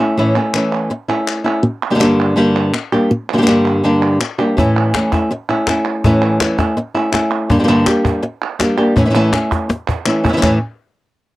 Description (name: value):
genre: flamenco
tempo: 164 BPM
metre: 4/4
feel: straight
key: unclear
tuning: A4 = 440 Hz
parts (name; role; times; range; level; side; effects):
- flamenco guitar; melody; 0.0-10.6 s; G2 to G4; -13 LUFS; equal; none
- palmas hand claps; percussion; 0.4-10.5 s; none; -22 LUFS; right 3 dB; none
- cajon; percussion; 4.6-10.5 s; none; -18 LUFS; left 1 dB; none
room: little or no reverb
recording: dry, close 1970s-style studio recording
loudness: -13 LUFS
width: side -17 dB against mid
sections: 0.0-10.4 A section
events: drum fill 9.7-10.4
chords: 0.0 A; 1.6 Gm; 4.6 A; 7.5 Gm; 9.0 A; 10.4 A5